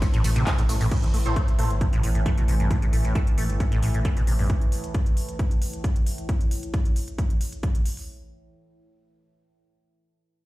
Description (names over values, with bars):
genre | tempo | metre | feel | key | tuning
driving peak-time techno | 134 BPM | 4/4 | straight | A minor | A4 = 441 Hz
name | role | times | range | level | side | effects
acid bass, saw | riff | 0.0-4.5 s | G2 to A3 | -29 LUFS | equal | ensemble chorus, sidechain pumping, dub echo
overtone-sweeping drone | drone | 0.0-6.3 s | A2 to E3 | -35 LUFS | right 1 dB | chorus, built-in reverb, sidechain pumping
electronic kick drum | drums | 0.0-7.7 s | none | -23 LUFS | equal | overdrive
techno drum kit | drums | 0.0-8.1 s | crash cymbal, handclaps, hi-hat, ride cymbal, tambourine | -36 LUFS | equal | overdrive, sidechain pumping on hats, sidechain pumping on cymbals, sidechain pumping on perc
dark detuned saw bass | bass | 0.2-4.5 s | G1 to A1 | -23 LUFS | equal | sidechain pumping
rave stab | stabs | 1.3-1.7 s | E4 to C5 | -35 LUFS | right 1 dB | chorus, built-in reverb, phaser, sidechain pumping, dub echo
room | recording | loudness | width
digital ambience | played on a big sound system in a bare room, large studio reverb | -21 LUFS | side -18 dB against mid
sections
0.9-8.1 A section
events
none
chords
0.0 A5